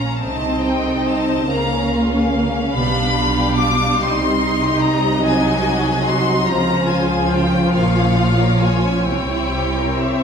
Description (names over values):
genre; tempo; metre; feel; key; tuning
classical, slow romantic movement for string orchestra; 48 BPM (dotted quarters); 6/8; uneven beats, rubato; unclear; A4 = 443 Hz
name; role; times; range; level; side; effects
rich chamber violin section; melody; 0.0-10.2 s; E5 to D6; -22 LUFS; left 4 dB; none
rich symphonic violin section; second line; 0.0-10.2 s; G3 to F5; -23 LUFS; left 2 dB; none
warm chamber viola section; accompaniment; 0.0-10.2 s; F3 to F4; -20 LUFS; right 1 dB; none
dark symphonic cello section; bass; 0.0-10.2 s; Bb2 to Db3; -23 LUFS; right 2 dB; none
rich chamber double bass section; bass; 0.0-10.2 s; Bb1 to Db2; -24 LUFS; right 2 dB; none
room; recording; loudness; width
wet recital hall reverb, RT60 1.3 s; minimal, uncompressed stereo recording; -15 LUFS; side -6 dB against mid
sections
0.0-10.2 A section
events
none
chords
0.2 Adim/C; 1.5 Bbm/Db; 2.8 G7/B; 4.0 Cm; 5.2 Ab7/C; 6.5 Dbmaj7; 7.7 Bbm; 9.1 C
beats
| 0.23 1.50 | 2.76 4.00 | 5.25 6.48 | 7.75 9.07